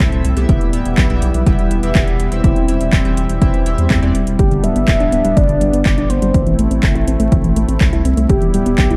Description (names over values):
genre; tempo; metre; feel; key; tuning
italo disco; 123 BPM; 4/4; straight; E minor; A4 = 440 Hz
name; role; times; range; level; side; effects
warm analog pad; sustained chords; 0.0-9.0 s; G3 to E4; -23 LUFS; equal; chorus
chorused polysynth; stabs; 0.0-4.2 s; A2 to E5; -25 LUFS; equal; cassette tape, digital delay
round analog bass; bass; 0.0-9.0 s; D1 to E2; -20 LUFS; equal; tube saturation
electronic kick drum; drums; 0.0-8.9 s; none; -18 LUFS; equal; overdrive
house drum kit; drums; 0.0-9.0 s; handclaps, hi-hat; -27 LUFS; equal; overdrive
soft octave-layered synth lead; melody; 4.4-9.0 s; G4 to E5; -22 LUFS; equal; chorus, digital delay
soft round pluck; arpeggios; 4.5-9.0 s; D3 to E4; -22 LUFS; equal; chorus, vintage 12-bit sampler grit, digital delay
room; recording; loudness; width
light reverb; dark, warm production, vinyl crackle; -15 LUFS; mono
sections
0.0-9.0 A section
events
none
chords
0.5 Em; 2.4 C; 4.4 G; 6.3 Am; 8.3 Em